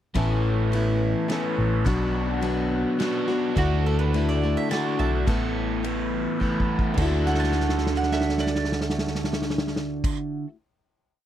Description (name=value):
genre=folk rock and heartland rock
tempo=106 BPM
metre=3/4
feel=straight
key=D major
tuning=A4 = 440 Hz
part: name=picked plugged-in steel-string acoustic guitar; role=accompaniment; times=0.1-10.6 s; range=A2 to A4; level=-29 LUFS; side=left 4 dB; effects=none
part: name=crunchy overdriven guitar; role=riff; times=0.1-10.5 s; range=A2 to A4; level=-27 LUFS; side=right 2 dB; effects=phaser
part: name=hollow-body short-scale fingered electric bass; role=bass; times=0.2-10.1 s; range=A1 to D2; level=-26 LUFS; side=equal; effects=none
part: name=unplugged drum kit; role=drums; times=0.2-10.2 s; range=crash cymbal, kick drum, ride cymbal, snare drum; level=-28 LUFS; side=equal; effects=none
part: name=mandolin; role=second line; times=3.6-10.1 s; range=F#4 to A5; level=-32 LUFS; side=right 5 dB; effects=none
room=light reverb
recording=dry, close 1970s-style studio recording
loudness=-22 LUFS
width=side -11 dB against mid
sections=0.2-7.0 pre-chorus; 7.0-10.4 final chord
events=drum fill 6.4-7.0, 7.3-10.0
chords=0.2 Aadd9; 1.9 Bm; 3.6 Dadd9; 5.3 Asus2; 7.0 Dadd9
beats=| 0.16 0.73 1.30 | 1.86 2.43 3.00 | 3.57 4.14 4.71 | 5.28 5.84 6.41 | 6.98 7.55 8.11 | 8.68 9.24 9.81